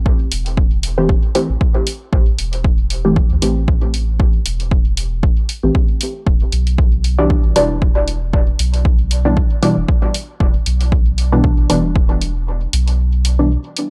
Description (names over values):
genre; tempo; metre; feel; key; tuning
dub techno; 116 BPM; 4/4; swing 56% on 16ths; A minor; A4 = 440 Hz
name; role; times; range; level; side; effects
soft dub sub bass; bass; 0.0-13.6 s; E1 to D2; -20 LUFS; equal; sidechain pumping
electronic kick drum; drums; 0.1-12.1 s; none; -17 LUFS; equal; none
electronic hi-hat; drums; 0.3-13.9 s; none; -25 LUFS; equal; none
filtered dub chord stab; stabs; 1.0-13.5 s; B2 to G4; -20 LUFS; equal; chorus, phaser, sidechain pumping, dub echo
room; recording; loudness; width
digital ambience; dry, gritty hardware recording, cassette tape; -16 LUFS; mono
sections
0.0-13.9 A section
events
kick drops out 12.5-13.9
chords
0.0 Am7; 6.3 Em7